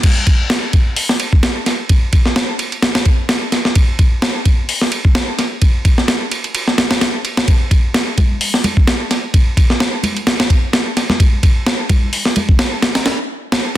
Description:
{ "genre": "breakbeat", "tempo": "129 BPM", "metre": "4/4", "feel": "swing 55% on 16ths", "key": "none", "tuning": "none", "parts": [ { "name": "breakbeat sampler-style drum kit", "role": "drums", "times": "0.0-13.6 s", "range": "crash cymbal, hi-hat, kick drum, ride cymbal, snare drum", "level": "-12 LUFS", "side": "equal", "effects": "none" }, { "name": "congas", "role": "percussion", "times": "8.2-12.5 s", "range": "none", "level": "-22 LUFS", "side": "equal", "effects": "none" } ], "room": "light reverb", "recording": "dense, heavily limited modern master", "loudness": "-12 LUFS", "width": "side -14 dB against mid", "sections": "0.0-13.8 A section", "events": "none", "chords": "none", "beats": "| 0.03 0.50 0.96 1.43 | 1.89 2.36 2.83 3.29 | 3.75 4.22 4.68 5.15 | 5.62 6.08 6.54 7.01 | 7.48 7.94 8.41 8.87 | 9.34 9.80 10.27 10.73 | 11.20 11.66 12.13 12.59 | 13.06 13.52" }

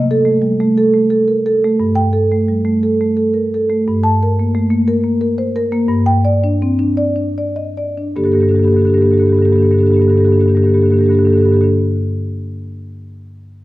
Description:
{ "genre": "classical, contemporary piece for solo marimba", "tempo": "49-60 BPM (dotted quarters)", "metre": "6/8", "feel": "straight", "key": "G minor", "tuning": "A4 = 440 Hz", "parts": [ { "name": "marimba with soft mallets", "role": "solo", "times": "0.0-11.7 s", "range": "G2 to A5", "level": "-12 LUFS", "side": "equal", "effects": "none" } ], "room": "wet recital hall reverb, RT60 1.6 s", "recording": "dark, warm production", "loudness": "-12 LUFS", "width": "side -17 dB against mid", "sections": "0.0-3.8 A section; 3.8-8.2 B section; 8.2-12.9 C section", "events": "slowing down 2.8-8.2", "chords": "0.0 C5; 1.8 Gsus2; 3.8 Gmadd9; 5.9 Ebmaj7/G (rootless); 8.2 Gmadd9", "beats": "0.77 | 1.79 2.82 | 3.84 4.86 | 5.89 6.98 | 8.17 9.36 | 10.54" }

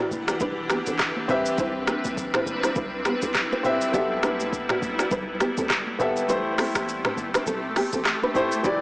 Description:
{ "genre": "afrobeats", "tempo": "102 BPM", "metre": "4/4", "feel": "swing 58% on 16ths", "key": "unclear", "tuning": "A4 = 439 Hz", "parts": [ { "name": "warm grand piano", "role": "accompaniment", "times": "0.0-8.8 s", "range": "E3 to E5", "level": "-28 LUFS", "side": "left 1 dB", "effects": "none" }, { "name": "granular cloud pad", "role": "sustained chords", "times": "0.1-8.8 s", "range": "E3 to F#5", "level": "-30 LUFS", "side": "equal", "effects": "built-in reverb" }, { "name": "nylon-string guitar", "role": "riff", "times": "0.0-8.8 s", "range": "B3 to D5", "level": "-28 LUFS", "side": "right 1 dB", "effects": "tape echo" }, { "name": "warm 808-style bass", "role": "bass", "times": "0.1-8.8 s", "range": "E1 to D2", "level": "-37 LUFS", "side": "equal", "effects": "none" }, { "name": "afro-pop drum kit", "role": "drums", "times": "0.1-8.8 s", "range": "finger snaps, handclaps, hi-hat, kick drum, rim click, shaker, toms", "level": "-27 LUFS", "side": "equal", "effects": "none" }, { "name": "congas", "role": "percussion", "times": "0.1-8.8 s", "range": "none", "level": "-38 LUFS", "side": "right 1 dB", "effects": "none" } ], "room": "moderate plate reverb, RT60 2.7 s", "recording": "blown-out, overdriven recording, overdrive, small speaker sound", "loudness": "-22 LUFS", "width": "side -23 dB against mid", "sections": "0.0-8.8 A section", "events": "kick muted 6.3-8.6", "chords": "0.0 Em7; 1.3 Cmaj7; 3.9 G6/B; 6.3 Am7", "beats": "0.41 1.00 | 1.58 2.17 2.76 3.35 | 3.94 4.53 5.11 5.70 | 6.29 6.88 7.47 8.05 | 8.64" }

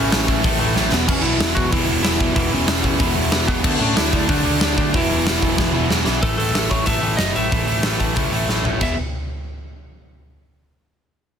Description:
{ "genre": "punk rock", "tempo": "186 BPM", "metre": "4/4", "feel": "straight", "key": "unclear", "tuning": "A4 = 440 Hz", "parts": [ { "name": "lightly driven lead guitar", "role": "melody", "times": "0.0-9.0 s", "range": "B3 to E5", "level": "-24 LUFS", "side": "equal", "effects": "none" }, { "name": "distorted electric guitar", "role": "riff", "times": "0.0-8.9 s", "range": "E2 to D4", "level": "-24 LUFS", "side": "right 14 dB", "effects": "overdrive" }, { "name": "overdriven semi-hollow guitar", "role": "riff", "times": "0.0-8.9 s", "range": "E2 to D4", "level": "-24 LUFS", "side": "left 15 dB", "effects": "none" }, { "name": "overdriven picked electric bass", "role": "bass", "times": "0.0-9.0 s", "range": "E1 to A2", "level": "-24 LUFS", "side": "equal", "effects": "none" }, { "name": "big rock drum kit", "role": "drums", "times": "0.1-8.9 s", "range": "crash cymbal, hi-hat, kick drum, snare drum, toms", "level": "-20 LUFS", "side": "equal", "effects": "none" } ], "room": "little or no reverb", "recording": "dense, heavily limited modern master", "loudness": "-16 LUFS", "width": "side -8 dB against mid", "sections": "0.0-6.2 A section; 6.2-8.8 B section; 8.8-10.1 C section", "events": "drum fill 0.8-1.1, 5.6-6.2, 8.5-8.8", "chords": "0.0 A; 0.9 E5; 3.7 D5; 4.9 E5; 6.2 A5; 8.8 E5", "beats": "0.12 0.44 0.76 | 1.08 1.41 1.73 2.05 | 2.37 2.69 3.01 3.33 | 3.65 3.97 4.29 4.61 | 4.93 5.26 5.58 5.90 | 6.22 6.54 6.87 7.19 | 7.51 7.84 8.16 8.48 | 8.81" }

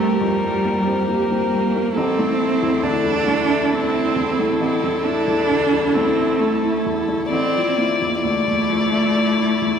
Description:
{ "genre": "neoclassical piano and strings", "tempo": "67 BPM", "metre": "3/4", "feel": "rubato", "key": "unclear", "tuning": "A4 = 439 Hz", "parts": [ { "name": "dark violin", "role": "melody", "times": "0.0-9.8 s", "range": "A4 to D5", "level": "-22 LUFS", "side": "left 4 dB", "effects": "none" }, { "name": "rich cello", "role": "second line", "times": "0.0-9.8 s", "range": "G3 to D4", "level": "-20 LUFS", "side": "right 3 dB", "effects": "none" }, { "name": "clear upright piano", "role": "accompaniment", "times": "0.0-9.8 s", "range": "A1 to D5", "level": "-24 LUFS", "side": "left 2 dB", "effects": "none" }, { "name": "warm viola", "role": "accompaniment", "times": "0.0-9.8 s", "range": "E4 to G4", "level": "-27 LUFS", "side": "equal", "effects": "none" } ], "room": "wet church reverb, RT60 3.1 s", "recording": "recorded in a church or concert hall", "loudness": "-17 LUFS", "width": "side -7 dB against mid", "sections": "0.0-9.8 A section", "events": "none", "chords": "0.0 C7(no3); 2.0 Am; 7.3 Dmadd9/A", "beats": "0.21 1.10 | 1.97 2.85 3.72 | 4.61 5.50 6.40 | 7.32 8.23 9.14" }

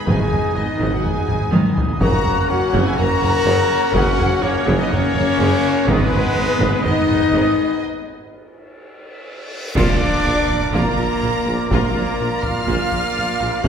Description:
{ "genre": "cinematic, epic orchestral film score", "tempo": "124 BPM", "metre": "4/4", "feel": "straight", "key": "G# minor", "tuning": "A4 = 443 Hz", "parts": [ { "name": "rich symphonic violin section", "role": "melody", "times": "0.0-13.7 s", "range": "B4 to Gb6", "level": "-28 LUFS", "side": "left 1 dB", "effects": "none" }, { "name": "mellow silver concert flute", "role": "second line", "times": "0.0-13.7 s", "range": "Bb4 to A#5", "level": "-27 LUFS", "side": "left 1 dB", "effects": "none" }, { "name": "rich symphonic violin section", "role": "second line", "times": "0.0-13.7 s", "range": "Bb4 to A#5", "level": "-28 LUFS", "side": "left 1 dB", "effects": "none" }, { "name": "rich studio viola section", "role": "accompaniment", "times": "0.0-13.7 s", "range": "C#3 to Gb4", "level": "-27 LUFS", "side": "right 1 dB", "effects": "none" }, { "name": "dark French horn section", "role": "sustained chords", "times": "0.0-13.7 s", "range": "Bb3 to A#4", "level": "-22 LUFS", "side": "left 4 dB", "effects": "none" }, { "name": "pipe organ, cornet", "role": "sustained chords", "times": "0.0-13.7 s", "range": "A#3 to F#5", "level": "-27 LUFS", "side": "equal", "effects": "none" }, { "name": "warm trumpet", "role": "stabs", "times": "0.0-13.7 s", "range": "G#3 to Gb4", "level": "-26 LUFS", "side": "right 1 dB", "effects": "none" }, { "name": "rich symphonic cello section", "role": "bass", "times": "0.1-13.7 s", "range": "Eb2 to Bb2", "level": "-27 LUFS", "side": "right 2 dB", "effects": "none" }, { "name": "rich symphonic double bass section", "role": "bass", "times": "0.1-13.7 s", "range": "F#1 to Eb2", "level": "-27 LUFS", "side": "right 2 dB", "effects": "none" }, { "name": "warm tuba", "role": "bass", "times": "0.1-13.7 s", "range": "F#1 to Eb2", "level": "-26 LUFS", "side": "right 2 dB", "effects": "none" }, { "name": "taiko ensemble", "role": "drums", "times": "0.1-13.7 s", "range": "none", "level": "-22 LUFS", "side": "equal", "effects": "none" }, { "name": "cymbal swell, clash cymbals and concert bass drum", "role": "percussion", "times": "5.9-10.7 s", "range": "none", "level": "-28 LUFS", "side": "equal", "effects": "none" }, { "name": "reverse cymbal and impact", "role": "sound effects", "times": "9.3-11.7 s", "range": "none", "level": "-31 LUFS", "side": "equal", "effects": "none" } ], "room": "wet scoring stage reverb, RT60 1.6 s", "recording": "heard from further back in the room", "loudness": "-15 LUFS", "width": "side -7 dB against mid", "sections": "0.0-9.8 A section; 9.8-13.7 B section", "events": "drum fill 1.3-2.0, 9.0-9.8; break 7.8-9.8; reverse cymbal 9.3-9.8; band accent 9.8-10.2; impact 9.8-11.7", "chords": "0.0 G#m; 2.0 F#; 5.9 G#m; 9.8 Bb", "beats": "| 0.08 0.57 1.05 1.54 | 2.02 2.50 2.99 3.47 | 3.96 4.44 4.92 5.41 | 5.89 6.37 6.86 7.34 | 7.83 8.31 8.79 9.28 | 9.76 10.24 10.73 11.21 | 11.70 12.18 12.66 13.15 | 13.63" }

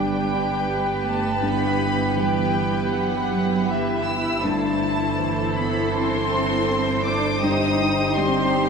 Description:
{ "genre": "cinematic, emotional film score for orchestra", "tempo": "80 BPM", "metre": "4/4", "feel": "rubato", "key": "unclear", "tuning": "A4 = 443 Hz", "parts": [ { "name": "rich studio violin section", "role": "melody", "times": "0.0-8.7 s", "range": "E5 to E6", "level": "-27 LUFS", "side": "left 3 dB", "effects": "none" }, { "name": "rich studio violin section", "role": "second line", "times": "0.0-8.7 s", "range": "G4 to C5", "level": "-25 LUFS", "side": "right 1 dB", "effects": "none" }, { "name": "warm grand piano", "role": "accompaniment", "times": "0.0-8.7 s", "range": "G2 to G3", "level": "-28 LUFS", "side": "left 4 dB", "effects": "none" }, { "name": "warm studio viola section", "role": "accompaniment", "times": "0.0-8.7 s", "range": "E3 to E4", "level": "-28 LUFS", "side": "equal", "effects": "none" }, { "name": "warm chamber double bass section", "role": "bass", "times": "0.0-8.7 s", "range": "G1", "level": "-29 LUFS", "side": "right 6 dB", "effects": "none" }, { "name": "warm studio cello section", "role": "bass", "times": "0.0-8.7 s", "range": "E3 to E4", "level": "-27 LUFS", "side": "right 2 dB", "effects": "none" } ], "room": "wet scoring stage reverb, RT60 1.7 s", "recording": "heard from further back in the room, lossy compression artefacts", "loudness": "-20 LUFS", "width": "side -5 dB against mid", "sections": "0.0-8.7 A section", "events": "none", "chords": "0.0 G; 1.4 Em/G; 4.4 Am/G; 7.4 Eb6/G", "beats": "0.68 | 1.43 2.18 2.94 3.69 | 4.44 5.19 5.94 6.68 | 7.42 8.16" }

